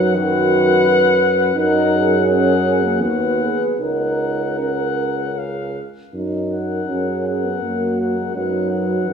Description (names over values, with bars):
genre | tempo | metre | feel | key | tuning
classical, hymn-like piece for brass band | 76-86 BPM | 3/4 | rubato | F# major | A4 = 440 Hz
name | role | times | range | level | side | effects
clear cornet | melody | 0.0-9.1 s | E#5 to F#5 | -23 LUFS | left 9 dB | none
mellow French horn section | second line | 0.0-9.1 s | D#4 to B4 | -23 LUFS | right 8 dB | none
dark trombone section | accompaniment | 0.0-9.1 s | G#4 to B4 | -23 LUFS | left 4 dB | none
mellow euphonium | accompaniment | 0.0-9.1 s | D#3 to D#4 | -22 LUFS | right 2 dB | none
warm tuba | bass | 0.0-9.1 s | C#2 to F#2 | -22 LUFS | equal | none
room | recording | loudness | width
moderate concert hall reverb, RT60 2.1 s | small room ambience | -16 LUFS | side -6 dB against mid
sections
0.0-9.1 A section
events
none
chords
0.0 B/F#; 1.6 F#; 3.0 B/D#; 3.8 F#/C#; 5.4 C#; 6.1 F#; 8.4 B/F#